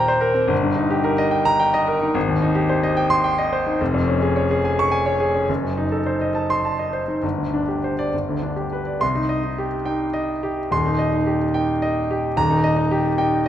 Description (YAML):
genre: classical, virtuoso piano study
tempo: 66-74 BPM (dotted quarters)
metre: 6/8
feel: rubato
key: C minor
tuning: A4 = 440 Hz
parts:
  - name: clear concert grand piano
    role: solo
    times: 0.0-13.5 s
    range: Eb1 to Db6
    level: -18 LUFS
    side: equal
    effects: none
room: wet recital hall reverb, RT60 1.8 s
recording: none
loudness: -18 LUFS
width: side -11 dB against mid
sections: 0.0-9.0 A section; 9.0-13.5 B section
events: none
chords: 0.0 Eb6; 0.5 Eb/G; 2.2 Abmaj7; 3.8 Db/F; 5.5 F#dim7; 7.2 Gsus4; 8.1 G; 9.0 Cm; 10.7 Cm/Eb; 12.4 Eb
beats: | 0.51 1.33 | 2.15 2.97 | 3.80 4.64 | 5.49 6.35 | 7.23 8.13 | 9.01 9.87 | 10.71 11.55 | 12.38 13.20